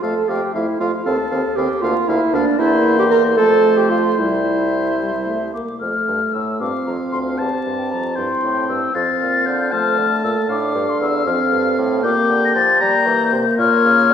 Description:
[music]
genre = quick classical-period movement for wind quintet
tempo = 77 BPM (dotted quarters)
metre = 6/8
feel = rubato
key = F major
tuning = A4 = 439 Hz
[part]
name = mellow concert flute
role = melody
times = 0.0-14.1 s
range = D5 to Bb6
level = -20 LUFS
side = left 5 dB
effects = none
[part]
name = clear oboe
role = second line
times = 0.0-14.1 s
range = C5 to Bb5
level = -24 LUFS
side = left 3 dB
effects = none
[part]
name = mellow French horn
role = accompaniment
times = 0.0-14.1 s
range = G3 to D4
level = -22 LUFS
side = equal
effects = none
[part]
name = mellow clarinet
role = accompaniment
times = 0.0-14.1 s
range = D4 to Bb4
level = -21 LUFS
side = right 3 dB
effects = none
[part]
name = warm bassoon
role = bass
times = 0.0-14.1 s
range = C2 to G3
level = -24 LUFS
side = right 1 dB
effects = none
[sound]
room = wet recital hall reverb, RT60 1.5 s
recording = heard from further back in the room, vinyl crackle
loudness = -15 LUFS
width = side -8 dB against mid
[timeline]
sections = 0.0-5.8 A section; 5.8-14.1 B section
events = none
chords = 0.0 F; 1.1 F7/Eb; 1.8 Bb/D; 2.6 C7/E; 3.4 F; 4.2 C; 5.8 F; 7.4 C/E; 8.9 F; 12.0 Gm7/Bb; 13.6 Bbm

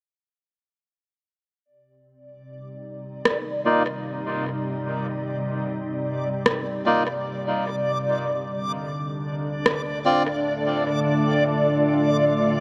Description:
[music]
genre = ambient dub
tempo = free time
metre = none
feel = none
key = C dorian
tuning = A4 = 440 Hz
[part]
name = soft additive organ-like pad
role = sustained chords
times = 2.5-12.6 s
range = C3 to F4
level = -28 LUFS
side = equal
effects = ensemble chorus, built-in reverb
[part]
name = backwards swelling texture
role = texture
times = 2.3-12.6 s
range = D5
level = -30 LUFS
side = equal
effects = built-in reverb
[part]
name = electronic rim click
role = drums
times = 3.3-9.8 s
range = none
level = -28 LUFS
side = equal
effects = dub echo
[part]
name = melodica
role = stabs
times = 3.7-10.2 s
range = Bb3 to D5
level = -28 LUFS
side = equal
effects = low-pass filter, dub echo
[sound]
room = moderate huge ambient reverb, RT60 6.2 s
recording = none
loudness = -24 LUFS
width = mono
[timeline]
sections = 1.7-12.6 A section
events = fade-in on ambient pad 1.7-12.6; filter sweep on melodica 1.7-12.6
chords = 1.7 Cmadd9; 8.1 Dm

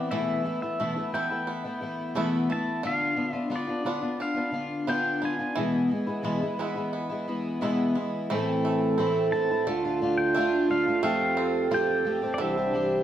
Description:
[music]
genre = folk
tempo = 88 BPM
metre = 4/4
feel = straight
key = unclear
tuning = A4 = 440 Hz
[part]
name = pedal steel guitar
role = melody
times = 0.0-13.0 s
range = D5 to A5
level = -31 LUFS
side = left 1 dB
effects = none
[part]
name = fingerpicked twelve-string acoustic guitar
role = accompaniment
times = 0.0-13.0 s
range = E2 to G4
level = -28 LUFS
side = left 2 dB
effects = none
[part]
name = bluegrass banjo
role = arpeggios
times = 0.0-13.0 s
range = D3 to F4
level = -34 LUFS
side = right 5 dB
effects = none
[part]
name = dark clarinet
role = second line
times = 8.3-13.0 s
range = F4 to C5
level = -27 LUFS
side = right 4 dB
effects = slapback echo
[part]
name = pedal harmonium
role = sustained chords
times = 8.3-13.0 s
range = C2 to D5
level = -34 LUFS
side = equal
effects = none
[sound]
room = wet large studio reverb, RT60 1.2 s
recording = none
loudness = -24 LUFS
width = side -10 dB against mid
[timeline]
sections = 0.0-8.3 A section; 8.3-13.0 B section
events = none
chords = 0.1 Esus4; 2.8 Bdim/D; 5.6 E; 8.3 Am; 9.7 Dm; 11.0 Fadd9; 12.4 Cadd9

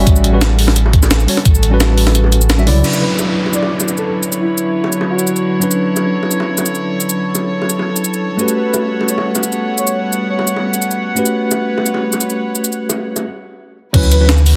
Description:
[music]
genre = liquid drum and bass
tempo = 173 BPM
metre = 4/4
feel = straight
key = D major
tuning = A4 = 440 Hz
[part]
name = tine electric piano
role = accompaniment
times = 0.0-14.3 s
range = C#3 to E5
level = -20 LUFS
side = equal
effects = medium tremolo, low-pass filter, digital delay
[part]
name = dark chamber string section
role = sustained chords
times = 0.0-14.6 s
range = C#3 to F#5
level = -24 LUFS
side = equal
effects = sidechain pumping, low-pass filter
[part]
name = warm sub bass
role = bass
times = 0.0-2.8, 13.9-14.6 s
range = A1 to D2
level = -14 LUFS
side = equal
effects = tube saturation
[part]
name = breakbeat sampler-style drum kit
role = drums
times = 0.1-14.5 s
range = crash cymbal, hi-hat, shaker, snare drum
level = -20 LUFS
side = equal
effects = soft clipping on snare
[part]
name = electronic kick drum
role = drums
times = 0.1-1.5, 13.9-14.0 s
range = none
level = -13 LUFS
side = equal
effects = none
[part]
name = bongos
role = percussion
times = 0.4-13.2 s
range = none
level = -27 LUFS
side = equal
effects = none
[part]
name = downlifter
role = sound effects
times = 2.8-5.6 s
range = none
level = -27 LUFS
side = equal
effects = none
[part]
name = breathy flute-like synth lead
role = melody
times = 3.0-5.6, 8.6-10.6, 14.1-14.3 s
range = E4 to D5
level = -25 LUFS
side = equal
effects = lush chorus, dub echo
[sound]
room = light reverb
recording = dense, heavily limited modern master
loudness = -15 LUFS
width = mono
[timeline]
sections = 0.0-2.8 A section; 2.8-13.9 B section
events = drop 0.0-2.8; kick drops out 2.1-2.8; filter sweep on string section 2.8-13.9; break 13.2-13.9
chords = 0.0 A13; 2.8 Dmaj13; 8.4 A13; 13.9 Dmaj13

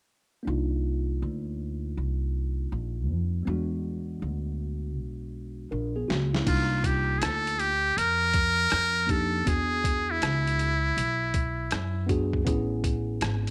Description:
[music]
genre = hip hop, jazz-hop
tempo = 80 BPM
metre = 4/4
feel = swing 65% on 16ths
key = unclear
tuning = A4 = 440 Hz
[part]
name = tine electric piano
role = accompaniment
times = 0.4-13.5 s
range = G3 to Bb4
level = -36 LUFS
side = equal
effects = overdrive, phaser, low-pass filter
[part]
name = upright bass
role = bass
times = 0.5-13.5 s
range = G#1 to F#2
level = -32 LUFS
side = equal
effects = none
[part]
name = boom bap sampler-style drum kit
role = drums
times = 6.1-13.5 s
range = crash cymbal, hi-hat, kick drum, rim click, snare drum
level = -32 LUFS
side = equal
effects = none
[part]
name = trumpet with metal mute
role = melody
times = 6.5-12.1 s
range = E4 to Bb4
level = -28 LUFS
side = equal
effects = none
[sound]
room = little or no reverb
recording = none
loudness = -28 LUFS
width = mono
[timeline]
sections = 0.5-6.5 A section; 6.5-13.5 B section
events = filter sweep on tine electric piano 0.5-6.5; drum fill 5.7-6.5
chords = 0.5 Cm11; 3.5 E9; 6.5 Cm11; 9.5 E9; 12.5 Amaj9

